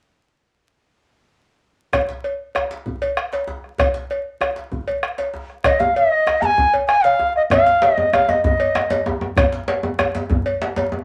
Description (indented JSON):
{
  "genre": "west african traditional, West African drum ensemble",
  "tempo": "129 BPM (dotted quarters)",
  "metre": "12/8",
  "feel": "straight",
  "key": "unclear",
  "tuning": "A4 = 440 Hz",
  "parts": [
    { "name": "bombo", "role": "percussion", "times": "1.9-11.0 s", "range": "none", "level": "-26 LUFS", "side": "equal", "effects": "none" },
    { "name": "cowbell", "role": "percussion", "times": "1.9-10.9 s", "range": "none", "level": "-24 LUFS", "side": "equal", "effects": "none" },
    { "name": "djembe", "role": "percussion", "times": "1.9-10.9 s", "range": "none", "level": "-32 LUFS", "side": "equal", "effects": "none" },
    { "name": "bright reedy bansuri", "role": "melody", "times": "5.6-9.0 s", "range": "Eb5 to Bb5", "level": "-18 LUFS", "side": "equal", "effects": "none" },
    { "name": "djembe", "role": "percussion", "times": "5.8-11.0 s", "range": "none", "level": "-27 LUFS", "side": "equal", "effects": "none" }
  ],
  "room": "wet club reverb, RT60 0.5 s",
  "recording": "vinyl crackle",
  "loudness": "-19 LUFS",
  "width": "mono",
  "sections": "1.9-5.6 A section; 5.6-11.0 B section",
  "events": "none",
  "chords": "none"
}